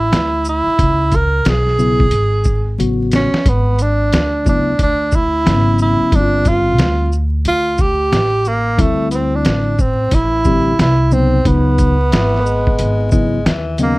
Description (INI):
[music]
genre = hip hop, jazz-hop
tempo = 90 BPM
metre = 4/4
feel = swing 63% on 16ths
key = unclear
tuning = A4 = 440 Hz
[part]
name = breathy tenor saxophone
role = melody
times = 0.0-14.0 s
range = A3 to A#4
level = -17 LUFS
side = right 2 dB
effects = none
[part]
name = upright bass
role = bass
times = 0.0-14.0 s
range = G1 to D#2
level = -17 LUFS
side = equal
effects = none
[part]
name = trip hop sampler-style drum kit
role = drums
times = 0.1-14.0 s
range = hi-hat, kick drum, shaker, snare drum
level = -17 LUFS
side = equal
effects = none
[part]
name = mellow tine electric piano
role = accompaniment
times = 1.8-14.0 s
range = C#3 to G4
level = -18 LUFS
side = left 2 dB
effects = wide subtle chorus
[part]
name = breathy tenor saxophone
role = second line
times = 12.1-14.0 s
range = D#3 to A#3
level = -22 LUFS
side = left 2 dB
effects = none
[sound]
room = light reverb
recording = dark, warm production, vinyl crackle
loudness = -12 LUFS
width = side -21 dB against mid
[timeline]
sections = 0.0-14.0 A section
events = drum fill 2.8-3.5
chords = 0.0 Dsus2; 0.8 C#7(no3); 3.5 G#m7b5; 6.1 Gsus2; 8.8 Dsus2; 11.5 C#m9